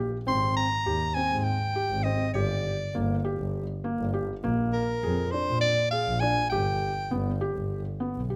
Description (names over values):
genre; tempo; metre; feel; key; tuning
contemporary instrumental, chamber music in an uneven meter; 202 BPM (eighths); 7/8; straight; unclear; A4 = 441 Hz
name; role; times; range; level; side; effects
felt-muted upright piano; arpeggios; 0.0-8.4 s; Bb3 to Ab4; -34 LUFS; equal; none
dark double bass; bass; 0.0-8.4 s; G1 to Bb2; -32 LUFS; equal; none
clear soprano saxophone; melody; 0.3-7.1 s; Bb4 to C6; -30 LUFS; equal; none
room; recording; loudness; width
moderate recital hall reverb, RT60 1.6 s; close, detailed microphones; -28 LUFS; mono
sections
0.0-8.4 A section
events
none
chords
0.3 Abmaj7; 2.4 Gm; 4.4 Bb7; 6.5 G